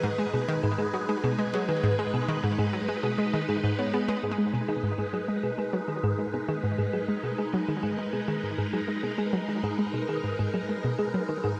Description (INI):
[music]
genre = ambient, sequencer-driven space music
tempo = 100 BPM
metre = 4/4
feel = straight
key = G# minor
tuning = A4 = 441 Hz
[part]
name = phased string machine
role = sustained chords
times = 0.0-11.6 s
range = G#3 to B4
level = -33 LUFS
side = equal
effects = ensemble chorus, phaser
[part]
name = analog pluck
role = riff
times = 0.0-11.5 s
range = G#2 to B3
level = -32 LUFS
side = equal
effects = chorus, delay
[part]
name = thumb-piano-like synth pluck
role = arpeggios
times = 0.2-11.6 s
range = G#4 to C#5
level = -37 LUFS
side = equal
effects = chorus, delay
[part]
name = bubbling stepped-filter texture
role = texture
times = 9.0-11.6 s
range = none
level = barely audible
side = none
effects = none
[sound]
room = moderate plate reverb, RT60 2.9 s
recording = none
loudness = -29 LUFS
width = mono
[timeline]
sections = 0.0-4.2 A section; 4.2-11.6 B section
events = filter sweep on synth arpeggio sound 4.2-11.6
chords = 0.0 G#m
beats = 0.04 0.64 1.24 | 1.84 2.44 3.04 3.64 | 4.24 4.84 5.44 6.04 | 6.64 7.24 7.84 8.44 | 9.04 9.64 10.24 10.84 | 11.44